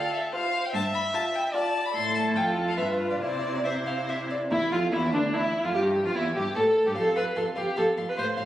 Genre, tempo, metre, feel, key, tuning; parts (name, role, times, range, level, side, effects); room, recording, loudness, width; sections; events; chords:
quick classical-period movement for string quartet; 147 BPM; 3/4; rubato; A4 = 440 Hz
rich violin; melody; 0.0-8.4 s; D4 to C6; -31 LUFS; left 3 dB
dark violin; second line; 0.0-8.4 s; D4 to F5; -30 LUFS; equal
rich viola; accompaniment; 0.0-8.3 s; D4 to C5; -27 LUFS; right 1 dB
warm cello; bass; 0.7-8.5 s; D2 to C3; -31 LUFS; right 1 dB
wet scoring stage reverb, RT60 1.7 s; recorded on a phone in the room, studio reverb; -24 LUFS; side -13 dB against mid
0.0-4.5 A section; 4.5-8.5 B section
0.0 Dm7 (rootless); 0.7 G5; 1.9 Am; 2.4 F; 2.8 G7; 3.2 C; 4.5 Dmadd9; 5.7 Emadd11; 7.0 F5